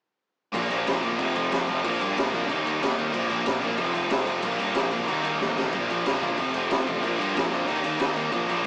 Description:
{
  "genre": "punk rock",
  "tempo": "185 BPM",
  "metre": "4/4",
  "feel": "straight",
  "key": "Bb major",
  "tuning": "A4 = 438 Hz",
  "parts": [
    { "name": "distorted electric guitar", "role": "riff", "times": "0.5-8.7 s", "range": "F2 to Eb4", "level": "-31 LUFS", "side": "equal", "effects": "overdrive" },
    { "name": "fuzz guitar", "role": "riff", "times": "0.5-8.7 s", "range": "F2 to Eb4", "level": "-34 LUFS", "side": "equal", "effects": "distortion" },
    { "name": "sludgy distorted guitar", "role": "riff", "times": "0.5-8.7 s", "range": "F2 to Eb4", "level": "-35 LUFS", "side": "equal", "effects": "overdrive" },
    { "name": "fuzz picked electric bass", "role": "bass", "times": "0.5-8.6 s", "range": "F1 to G2", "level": "-36 LUFS", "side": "equal", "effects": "overdrive" },
    { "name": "raw garage drum kit", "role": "drums", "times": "0.5-8.7 s", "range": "crash cymbal, kick drum, snare drum", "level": "-30 LUFS", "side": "equal", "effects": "none" }
  ],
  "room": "moderate stone room reverb, RT60 1.0 s",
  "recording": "rough rehearsal-room recording, warm saturation, small speaker sound",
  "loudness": "-26 LUFS",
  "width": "mono",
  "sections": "0.6-8.7 A section",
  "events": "drum fill 5.4-5.7",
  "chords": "0.6 Bb; 1.2 F; 1.8 Bb; 2.5 Eb; 3.1 Bb; 3.8 F; 4.4 Bb; 5.1 Eb; 5.7 Bb; 6.4 F; 7.0 Bb; 7.7 Eb",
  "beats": "| 0.55 0.88 1.20 1.52 | 1.85 2.17 2.50 2.82 | 3.15 3.47 3.79 4.12 | 4.44 4.77 5.09 5.41 | 5.74 6.06 6.38 6.71 | 7.03 7.36 7.68 8.00 | 8.33 8.65"
}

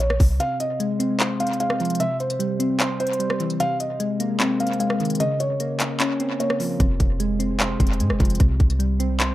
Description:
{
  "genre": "hip hop, trap",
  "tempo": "150 BPM",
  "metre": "4/4",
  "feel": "half-time",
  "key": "F minor",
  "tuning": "A4 = 440 Hz",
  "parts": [
    { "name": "felt-muted upright piano", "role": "melody", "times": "0.0-6.6 s", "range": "C5 to F5", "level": "-26 LUFS", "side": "equal", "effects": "low-pass filter, tape echo" },
    { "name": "clean 808-style bass", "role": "bass", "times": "0.0-0.4, 6.8-9.3 s", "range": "F1 to Ab2", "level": "-22 LUFS", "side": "equal", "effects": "none" },
    { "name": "trap drum kit", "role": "drums", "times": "0.0-9.3 s", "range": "handclaps, hi-hat, kick drum, rim click", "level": "-23 LUFS", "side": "equal", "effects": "tape echo" },
    { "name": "soft electric-piano-like synth keys", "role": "accompaniment", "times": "0.4-9.3 s", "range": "C3 to C5", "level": "-24 LUFS", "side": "equal", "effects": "chorus, low-pass filter, tape echo" }
  ],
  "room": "light reverb, digital ambience",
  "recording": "echo-heavy mix",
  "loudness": "-20 LUFS",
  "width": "side -15 dB against mid",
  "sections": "0.0-9.3 A section",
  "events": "break 0.4-6.8",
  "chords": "0.4 Fm; 2.0 C; 3.6 Abadd9; 5.2 Bbmadd9; 6.8 Fm; 8.4 C5",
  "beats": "0.00 | 0.40 0.80 1.20 1.60 | 2.00 2.40 2.80 3.20 | 3.60 4.00 4.40 4.80 | 5.20 5.60 6.00 6.40 | 6.80 7.20 7.60 8.00 | 8.40 8.80 9.20"
}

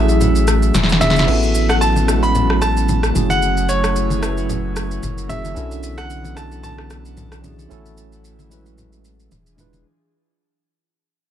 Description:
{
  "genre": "amapiano",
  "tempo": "112 BPM",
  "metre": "4/4",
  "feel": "swing 55% on 16ths",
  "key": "F# minor",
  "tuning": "A4 = 437 Hz",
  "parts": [
    { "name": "bright grand piano", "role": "melody", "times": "0.0-9.3 s", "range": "C#5 to B5", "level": "-22 LUFS", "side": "right 2 dB", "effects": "ping-pong delay" },
    { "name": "tine electric piano", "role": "accompaniment", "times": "0.0-9.9 s", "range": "G#3 to B4", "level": "-23 LUFS", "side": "equal", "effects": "medium stereo tremolo" },
    { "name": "airy breathy pad", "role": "sustained chords", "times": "0.0-9.8 s", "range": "D3 to A#4", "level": "-26 LUFS", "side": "right 1 dB", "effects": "chorus" },
    { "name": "punchy sub bass", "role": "bass", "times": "0.0-9.8 s", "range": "E1 to B1", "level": "-20 LUFS", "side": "equal", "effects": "none" },
    { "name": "deep house drum kit", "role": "drums", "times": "0.1-9.8 s", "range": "crash cymbal, rim click, shaker, snare drum", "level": "-21 LUFS", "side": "equal", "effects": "overdrive" },
    { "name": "congas", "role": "percussion", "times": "0.2-9.8 s", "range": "none", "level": "-25 LUFS", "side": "left 2 dB", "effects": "none" }
  ],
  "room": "little or no reverb",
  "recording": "none",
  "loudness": "-14 LUFS",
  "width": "side -10 dB against mid",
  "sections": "0.0-9.9 A section",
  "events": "fade-out 0.0-9.9; drum fill 0.7-1.3",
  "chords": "0.0 F#m9/A; 0.7 E7b9; 1.3 A6; 3.2 F#m9; 5.0 F#7; 5.6 Bm11; 7.7 F#m9/A; 9.3 E7b9",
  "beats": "0.21 0.74 | 1.28 1.81 2.35 2.89 | 3.42 3.96 4.49 5.03 | 5.57 6.10 6.64 7.17 | 7.71 8.24 8.78 9.31"
}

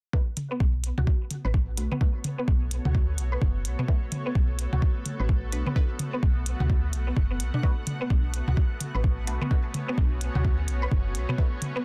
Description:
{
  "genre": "minimal techno",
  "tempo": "128 BPM",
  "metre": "4/4",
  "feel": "swing 60% on 16ths",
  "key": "B minor",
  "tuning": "A4 = 440 Hz",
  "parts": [
    { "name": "filtered dub chord stab", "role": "stabs", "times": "0.1-11.5 s", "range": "A3 to B4", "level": "-43 LUFS", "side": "equal", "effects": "phaser, subtle chorus, digital delay" },
    { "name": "electronic kick drum", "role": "drums", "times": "0.1-11.5 s", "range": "none", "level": "-26 LUFS", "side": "equal", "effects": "none" },
    { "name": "granular cloud pad", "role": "texture", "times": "1.4-11.8 s", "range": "B3 to F#5", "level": "-42 LUFS", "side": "equal", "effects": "built-in reverb, sidechain pumping" },
    { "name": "swarming drone", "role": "texture", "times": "1.9-11.8 s", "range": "A3 to A4", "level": "-47 LUFS", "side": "equal", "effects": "built-in reverb, phaser, sidechain pumping" },
    { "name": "electronic hi-hat", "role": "drums", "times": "0.4-11.7 s", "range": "none", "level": "-38 LUFS", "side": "equal", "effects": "none" },
    { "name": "electronic toms", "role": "percussion", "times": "0.4-11.7 s", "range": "none", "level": "-33 LUFS", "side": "equal", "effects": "none" },
    { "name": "mallet-like synth pluck", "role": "riff", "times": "0.5-11.8 s", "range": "B3 to B4", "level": "-38 LUFS", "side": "equal", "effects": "ensemble chorus, sidechain pumping, digital delay" },
    { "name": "woody FM bass", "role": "bass", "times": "0.6-11.3 s", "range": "F#1 to D2", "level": "-30 LUFS", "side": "equal", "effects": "sidechain pumping" }
  ],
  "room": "little or no reverb",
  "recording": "dense, heavily limited modern master",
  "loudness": "-26 LUFS",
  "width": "mono",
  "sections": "0.1-11.8 A section",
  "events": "filter sweep on synth arpeggio sound 0.1-11.8",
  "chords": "0.1 Bm7",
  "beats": "| 0.13 0.60 1.07 1.54 | 2.01 2.48 2.95 3.42 | 3.88 4.35 4.82 5.29 | 5.76 6.23 6.70 7.17 | 7.63 8.10 8.57 9.04 | 9.51 9.98 10.45 10.92 | 11.38"
}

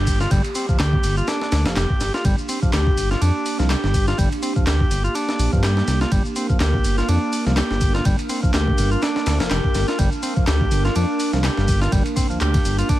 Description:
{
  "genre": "breakbeat, breaks",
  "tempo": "124 BPM",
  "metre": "4/4",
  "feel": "swing 56% on 16ths",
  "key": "G minor",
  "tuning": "A4 = 439 Hz",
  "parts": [
    { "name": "warbly tape-like pad", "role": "sustained chords", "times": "0.0-13.0 s", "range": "Bb3 to Bb4", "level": "-27 LUFS", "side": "right 2 dB", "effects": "chorus, built-in reverb, sidechain pumping" },
    { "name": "bright tonewheel organ", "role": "riff", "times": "0.0-13.0 s", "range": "F3 to G4", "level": "-25 LUFS", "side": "equal", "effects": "dub echo" },
    { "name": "dark detuned saw bass", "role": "bass", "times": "0.0-12.8 s", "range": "F1 to G2", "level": "-20 LUFS", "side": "equal", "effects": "none" },
    { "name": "downlifter and swell", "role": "sound effects", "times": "0.0-2.2, 12.9-13.0 s", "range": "none", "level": "-40 LUFS", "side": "equal", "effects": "none" },
    { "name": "breakbeat sampler-style drum kit", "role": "drums", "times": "0.1-13.0 s", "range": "kick drum, ride cymbal, snare drum", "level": "-22 LUFS", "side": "equal", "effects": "none" },
    { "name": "punchy analog drum machine", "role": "drums", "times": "0.1-13.0 s", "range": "handclaps, hi-hat, shaker", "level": "-31 LUFS", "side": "equal", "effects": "none" }
  ],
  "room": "light reverb",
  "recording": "vinyl crackle",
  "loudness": "-17 LUFS",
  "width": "side -15 dB against mid",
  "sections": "0.0-13.0 A section",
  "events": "none",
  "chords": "0.0 Gm",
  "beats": "| 0.31 0.80 1.28 1.76 | 2.25 2.73 3.21 3.70 | 4.18 4.67 5.15 5.63 | 6.12 6.60 7.09 7.57 | 8.05 8.54 9.02 9.51 | 9.99 10.47 10.96 11.44 | 11.93 12.41 12.89"
}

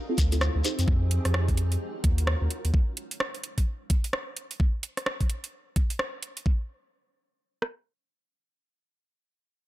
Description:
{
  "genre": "UK garage, two-step garage",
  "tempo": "129 BPM",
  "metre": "4/4",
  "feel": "swing 61% on 16ths",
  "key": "unclear",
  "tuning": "A4 = 441 Hz",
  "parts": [
    { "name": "soft string machine", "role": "sustained chords", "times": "0.0-2.7 s", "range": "C4 to Bb4", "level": "-38 LUFS", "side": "left 1 dB", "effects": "phaser, ensemble chorus, sidechain pumping" },
    { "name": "deep mellow chord stab", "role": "stabs", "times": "0.1-0.8 s", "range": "C4 to C5", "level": "-32 LUFS", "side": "right 2 dB", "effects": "chorus, vintage 12-bit sampler grit, digital delay" },
    { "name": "saturated sub bass", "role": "bass", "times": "0.2-2.7 s", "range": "D2 to F2", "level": "-25 LUFS", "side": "equal", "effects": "none" },
    { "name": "garage drum kit", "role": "drums", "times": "0.2-7.8 s", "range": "kick drum, rim click", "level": "-24 LUFS", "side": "equal", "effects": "overdrive" },
    { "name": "garage drum kit", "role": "drums", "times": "0.2-6.4 s", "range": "hi-hat, rim click", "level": "-32 LUFS", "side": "right 1 dB", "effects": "overdrive" },
    { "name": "shekere", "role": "percussion", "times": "0.2-0.9 s", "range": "none", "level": "-34 LUFS", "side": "left 4 dB", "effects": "none" }
  ],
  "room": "digital ambience",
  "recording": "none",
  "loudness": "-25 LUFS",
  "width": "side -16 dB against mid",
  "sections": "0.0-6.5 A section; 6.5-9.7 B section",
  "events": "none",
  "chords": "0.0 Dm9; 0.6 Fm9; 1.8 Ebm9; 2.7 N.C.",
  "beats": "0.41 | 0.88 1.34 1.81 2.27 | 2.74 3.20 3.67 4.13 | 4.60 5.06 5.53 5.99 | 6.46 6.92 7.39"
}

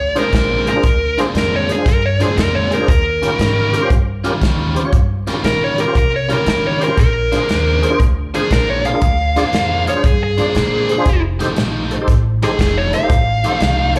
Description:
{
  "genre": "electric blues shuffle",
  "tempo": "117 BPM",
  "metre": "4/4",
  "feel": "swing 67% on 8ths",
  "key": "Bb mixolydian",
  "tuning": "A4 = 440 Hz",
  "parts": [
    { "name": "dark smooth lead guitar", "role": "melody", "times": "0.0-14.0 s", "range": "Ab4 to F5", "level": "-20 LUFS", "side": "equal", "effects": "overdrive, slapback echo, tape echo" },
    { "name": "upright bass", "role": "bass", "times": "0.0-13.9 s", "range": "F1 to Eb3", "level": "-22 LUFS", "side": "equal", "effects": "none" },
    { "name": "tonewheel organ", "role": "accompaniment", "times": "0.1-14.0 s", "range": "Db4 to D5", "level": "-24 LUFS", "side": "equal", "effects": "overdrive, chorus vibrato, slow rotary speaker, slapback echo" },
    { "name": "biting overdriven guitar", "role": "riff", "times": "0.2-14.0 s", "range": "Bb2 to C5", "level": "-24 LUFS", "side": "equal", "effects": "slapback echo" },
    { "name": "natural country drum kit", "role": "drums", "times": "0.2-14.0 s", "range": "hi-hat, kick drum, snare drum", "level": "-20 LUFS", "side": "equal", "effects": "none" }
  ],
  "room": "studio reverb",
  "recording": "live gig heard through the venue's PA, club reverb",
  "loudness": "-16 LUFS",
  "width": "mono",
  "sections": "0.0-14.0 A section",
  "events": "lead electric guitar solo 0.0-14.0",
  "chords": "0.0 Bb9; 2.9 Eb9; 7.0 Bb9; 11.1 F9",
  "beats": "0.33 | 0.84 1.35 1.86 2.37 | 2.88 3.39 3.90 4.42 | 4.93 5.44 5.95 6.46 | 6.97 7.48 7.99 8.51 | 9.02 9.53 10.04 10.55 | 11.06 11.57 12.08 12.59 | 13.10 13.61"
}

